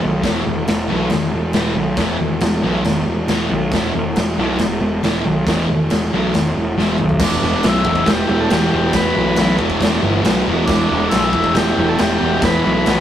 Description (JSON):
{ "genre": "garage rock duo or trio", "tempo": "138 BPM", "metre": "4/4", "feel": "straight", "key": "E minor from 7.2 s", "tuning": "A4 = 440 Hz", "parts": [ { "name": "fuzz picked electric bass", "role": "bass", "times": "0.0-13.0 s", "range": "E1 to B1", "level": "-19 LUFS", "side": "equal", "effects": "overdrive, tube saturation" }, { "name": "thick fuzz guitar", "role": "riff", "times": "0.2-13.0 s", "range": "E2 to E3", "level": "-20 LUFS", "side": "equal", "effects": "distortion" }, { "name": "raw garage drum kit", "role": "drums", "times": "0.2-13.0 s", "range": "crash cymbal, kick drum, snare drum, toms", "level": "-19 LUFS", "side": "equal", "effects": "none" }, { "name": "overdriven combo organ", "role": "melody", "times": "7.2-13.0 s", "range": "D4 to B4", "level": "-20 LUFS", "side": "left 1 dB", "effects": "spring reverb" } ], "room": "light reverb", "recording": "rough rehearsal-room recording, tube saturation", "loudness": "-14 LUFS", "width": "side -10 dB against mid", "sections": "0.0-7.2 A section; 7.2-13.0 B section", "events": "drum fill 6.8-7.2", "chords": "0.0 E5; 7.2 Em", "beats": "| 0.24 0.68 1.11 1.54 | 1.98 2.41 2.85 3.28 | 3.72 4.16 4.59 5.03 | 5.46 5.90 6.34 6.77 | 7.21 7.64 8.08 8.51 | 8.95 9.38 9.82 10.26 | 10.69 11.13 11.56 12.00 | 12.43 12.87" }